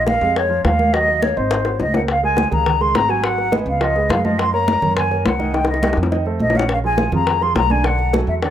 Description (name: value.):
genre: Afro-Cuban jazz.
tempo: 208 BPM.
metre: 4/4.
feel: straight.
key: Db major.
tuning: A4 = 441 Hz.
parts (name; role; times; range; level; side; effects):
mellow concert flute; melody; 0.0-8.5 s; C5 to C6; -19 LUFS; left 1 dB; plate reverb, tape echo.
warm concert grand piano; accompaniment; 0.0-8.5 s; Db3 to Gb5; -25 LUFS; right 5 dB; plate reverb.
upright bass; bass; 0.0-8.5 s; Ab1 to Gb2; -22 LUFS; right 1 dB; none.
bongos; percussion; 0.1-8.5 s; none; -23 LUFS; left 4 dB; none.
congas; percussion; 0.1-8.5 s; none; -24 LUFS; right 1 dB; none.
room: wet small room reverb, RT60 0.5 s.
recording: rough home demo mix.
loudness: -15 LUFS.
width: side -10 dB against mid.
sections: 0.0-2.1 A section; 2.1-8.5 B section.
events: drum fill 1.5-2.1, 5.5-6.7.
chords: 0.0 Bbm7; 0.9 Ebm; 1.5 Ab7; 2.1 Db5; 3.2 Abm7; 3.8 Db9; 4.4 Gbmaj9; 5.5 Cm7; 6.1 F7; 6.7 Bbm7; 7.8 Cbm7.